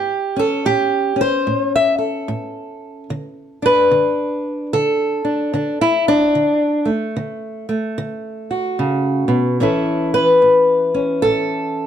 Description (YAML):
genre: acoustic country blues, solo or duo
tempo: 74 BPM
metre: 4/4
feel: swing 62% on 8ths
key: unclear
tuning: A4 = 440 Hz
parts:
  - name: fingerpicked old ladder-braced acoustic guitar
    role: solo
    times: 0.0-11.9 s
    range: A2 to E5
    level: -16 LUFS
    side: equal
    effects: none
room: light reverb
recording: none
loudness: -15 LUFS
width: side -9 dB against mid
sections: 0.0-11.9 A section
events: steel-string acoustic guitar solo 0.0-11.9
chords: 0.0 A; 3.1 D; 9.6 A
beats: 0.65 1.46 2.27 | 3.09 3.90 4.72 5.53 | 6.35 7.16 7.98 8.79 | 9.61 10.42 11.24